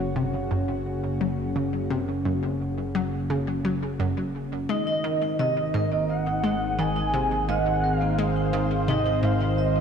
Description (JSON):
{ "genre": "ambient, sequencer-driven space music", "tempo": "86 BPM", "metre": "4/4", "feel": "straight", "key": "unclear", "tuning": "A4 = 441 Hz", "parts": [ { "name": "lush unison pad", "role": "sustained chords", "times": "0.0-9.8 s", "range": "Db3 to Db5", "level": "-27 LUFS", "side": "equal", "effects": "chorus, shimmer reverb" }, { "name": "analog pluck", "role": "riff", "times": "0.0-9.6 s", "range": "Gb2 to Ab3", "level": "-29 LUFS", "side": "left 1 dB", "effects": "chorus, shimmer reverb, tape echo" }, { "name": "fat analog bass", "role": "bass", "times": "0.0-9.8 s", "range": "Gb1 to Ab1", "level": "-32 LUFS", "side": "equal", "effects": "tube saturation" }, { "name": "expressive synth lead", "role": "melody", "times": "4.7-9.8 s", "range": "Eb5 to Ab5", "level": "-27 LUFS", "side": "right 1 dB", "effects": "ensemble chorus, cassette tape, shimmer reverb, tape echo" }, { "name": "vibraphone with medium hard mallets", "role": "arpeggios", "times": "4.7-9.6 s", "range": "Bb3 to Eb5", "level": "-32 LUFS", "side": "moving between left 5 dB and right 3 dB", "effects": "auto-pan, shimmer reverb, tape echo" } ], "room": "wet concert hall reverb, RT60 2.2 s", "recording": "dark, warm production", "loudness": "-23 LUFS", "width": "side -7 dB against mid", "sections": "0.0-9.8 A section", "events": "fade-in on analog synth bass 0.0-9.8", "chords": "0.0 Gb; 4.7 Ab" }